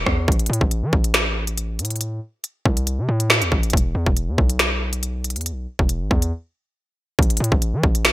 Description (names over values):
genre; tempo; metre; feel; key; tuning
hip hop, drill; 139 BPM; 4/4; half-time; unclear; A4 = 442 Hz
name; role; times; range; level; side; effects
hard-hitting 808-style bass; bass; 0.0-8.1 s; E1 to E3; -22 LUFS; equal; none
drill drum kit; drums; 0.1-8.1 s; finger snaps, hi-hat, kick drum, rim click, snare drum; -18 LUFS; equal; gated reverb
room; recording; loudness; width
little or no reverb; bright 1980s-style digital production; -18 LUFS; side -16 dB against mid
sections
0.0-8.1 A section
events
break 0.0, 6.3-7.2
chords
none